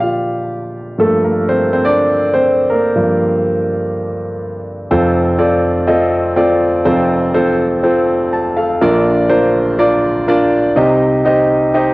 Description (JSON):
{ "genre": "pop", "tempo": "123 BPM", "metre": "4/4", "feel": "straight", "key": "unclear", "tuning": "A4 = 440 Hz", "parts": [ { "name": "warm grand piano", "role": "solo", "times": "0.0-11.9 s", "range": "F1 to A5", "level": "-12 LUFS", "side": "equal", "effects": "cassette tape" } ], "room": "moderate spring reverb, RT60 1.3 s, small room ambience", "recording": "home recording on cassette", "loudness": "-11 LUFS", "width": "side -21 dB against mid", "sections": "0.0-4.9 A section; 4.9-11.9 B section", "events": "grand piano solo 0.0-4.9", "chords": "0.0 Bb; 1.0 Gm7; 4.9 F; 8.8 Bb; 10.8 Cm", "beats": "0.02 0.51 | 1.00 1.49 1.97 2.46 | 2.95 3.44 3.93 4.42 | 4.91 5.40 5.89 6.37 | 6.86 7.35 7.84 8.33 | 8.82 9.31 9.79 10.28 | 10.77 11.26 11.75" }